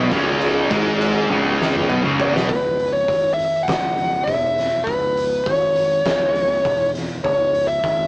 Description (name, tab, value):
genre	stoner and doom metal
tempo	101 BPM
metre	4/4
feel	straight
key	C# minor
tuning	A4 = 443 Hz
part	distorted electric guitar	riff	0.0-2.5 s	C#2 to B3	-19 LUFS	equal	overdrive
part	thick fuzz guitar	riff	0.0-2.5 s	C#2 to B3	-22 LUFS	equal	distortion
part	overdriven fingered electric bass	bass	0.0-8.1 s	C#1 to B1	-28 LUFS	equal	tube saturation
part	oversized low-tuned drum kit	drums	0.1-8.0 s	crash cymbal, hi-hat, kick drum, snare drum, toms	-24 LUFS	equal	none
part	fuzz lead guitar	melody	2.5-8.1 s	B4 to F#5	-18 LUFS	equal	distortion
room	moderate studio reverb, RT60 0.9 s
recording	band playing live in one room, small speaker sound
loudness	-16 LUFS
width	side -26 dB against mid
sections	0.0-2.5 A section; 2.5-8.1 B section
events	drum fill 1.3-2.5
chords	0.0 C#5; 2.5 C#m